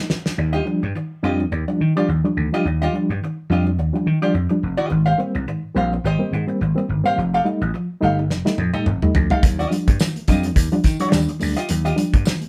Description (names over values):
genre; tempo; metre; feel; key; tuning
funk; 106 BPM; 4/4; swing 56% on 16ths; unclear; A4 = 444 Hz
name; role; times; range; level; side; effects
reed electric piano; stabs; 0.0-12.4 s; Ab2 to Eb4; -25 LUFS; equal; medium tremolo
damped 70s drum kit; drums; 0.1-0.4, 8.3-12.5 s; hi-hat, kick drum, snare drum, toms; -22 LUFS; equal; none
archtop guitar, miked and amplified; accompaniment; 0.4-12.3 s; F4 to F5; -26 LUFS; equal; wah
vintage slap bass; bass; 0.4-12.2 s; F1 to Eb3; -24 LUFS; equal; none
congas; percussion; 9.4-12.5 s; none; -34 LUFS; equal; none
tambourine; percussion; 9.4-12.4 s; none; -40 LUFS; equal; none
room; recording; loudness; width
moderate studio reverb, RT60 0.6 s; band playing live in one room; -20 LUFS; mono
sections
0.4-12.5 A section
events
drum fill 0.0-0.4, 8.3-9.4; band accent 0.0-0.4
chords
0.4 Ebmaj9; 4.9 Abmaj7; 7.2 F9; 9.4 Ebmaj9